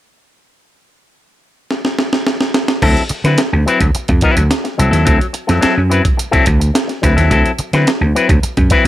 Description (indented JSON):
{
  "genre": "funk",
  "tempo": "107 BPM",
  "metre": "4/4",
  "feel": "straight",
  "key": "D mixolydian",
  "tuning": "A4 = 440 Hz",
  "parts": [
    { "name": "breakbeat sampler-style drum kit", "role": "drums", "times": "1.7-8.9 s", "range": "crash cymbal, hi-hat, kick drum, snare drum", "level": "-15 LUFS", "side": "right 1 dB", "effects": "none" },
    { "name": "electric guitar with an envelope filter", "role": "accompaniment", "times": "2.8-8.9 s", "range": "F#3 to B4", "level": "-16 LUFS", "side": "left 4 dB", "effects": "plate reverb" },
    { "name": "vintage slap bass", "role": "bass", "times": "2.8-8.9 s", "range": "C2 to D3", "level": "-13 LUFS", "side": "right 1 dB", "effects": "none" }
  ],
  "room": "light reverb",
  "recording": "none",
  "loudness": "-11 LUFS",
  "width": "side -14 dB against mid",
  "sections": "0.6-2.8 A section; 2.8-8.9 B section",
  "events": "drum fill 1.7-2.8",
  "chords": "0.6 N.C.; 2.8 D9"
}